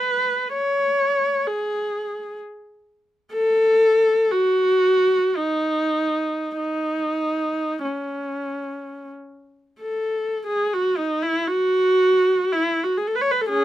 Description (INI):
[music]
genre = classical, free, expressive piece for unaccompanied viola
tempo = 38-66 BPM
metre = 3/4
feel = rubato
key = C# minor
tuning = A4 = 444 Hz
[part]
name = dark viola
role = solo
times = 0.0-13.6 s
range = C#4 to C#5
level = -19 LUFS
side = equal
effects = none
[sound]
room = little or no reverb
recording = close, detailed microphones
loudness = -19 LUFS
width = side -13 dB against mid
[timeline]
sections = 0.0-10.5 A section; 10.5-13.6 B section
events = none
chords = none